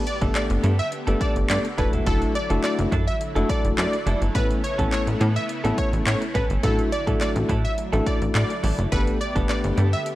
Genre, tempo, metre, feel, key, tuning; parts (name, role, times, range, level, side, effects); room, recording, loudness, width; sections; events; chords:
dance-pop; 105 BPM; 4/4; straight; D major; A4 = 436 Hz
bright tine electric piano; accompaniment; 0.0-9.9 s; A3 to B4; -27 LUFS; left 2 dB; sidechain pumping
warm analog pad; sustained chords; 0.0-10.2 s; C#3 to G4; -34 LUFS; left 1 dB; chorus, sidechain pumping
direct-recorded clean electric guitar; riff; 0.0-10.1 s; E3 to A4; -32 LUFS; right 4 dB; lush chorus
plucky unison lead; melody; 0.1-10.0 s; A4 to E5; -28 LUFS; equal
house drum kit; drums; 0.1-10.2 s; handclaps, hi-hat, kick drum, snare drum; -26 LUFS; equal
plucky analog bass; bass; 0.2-10.0 s; E1 to A2; -23 LUFS; equal; sidechain pumping
light reverb; dry, gritty hardware recording, cassette tape; -20 LUFS; side -16 dB against mid
0.0-10.2 A section
0.0 Gadd9; 1.8 Dadd9; 4.4 Aadd9; 6.6 Dadd9/A; 8.9 Gadd9